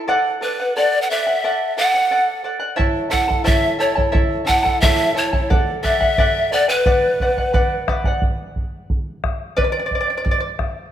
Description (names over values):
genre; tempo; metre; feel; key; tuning
andean folk, Andean ensemble; 88 BPM; 2/4; straight; unclear; A4 = 439 Hz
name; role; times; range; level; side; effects
charango; accompaniment; 0.0-10.5 s; E4 to A5; -21 LUFS; right 1 dB; none
breathy mellow pan flute; melody; 0.4-7.8 s; B4 to F#5; -19 LUFS; equal; none
breathy hollow pan flute; second line; 0.4-7.8 s; B4 to F#5; -23 LUFS; left 4 dB; none
bombo; percussion; 2.8-10.8 s; none; -20 LUFS; right 1 dB; none
room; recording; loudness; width
moderate recital hall reverb, RT60 1.8 s; none; -16 LUFS; side -10 dB against mid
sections
0.0-8.2 A section; 8.2-10.9 B section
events
charango solo 8.2-10.9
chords
0.1 D; 2.8 A; 5.5 D; 6.9 Bm; 8.2 N.C.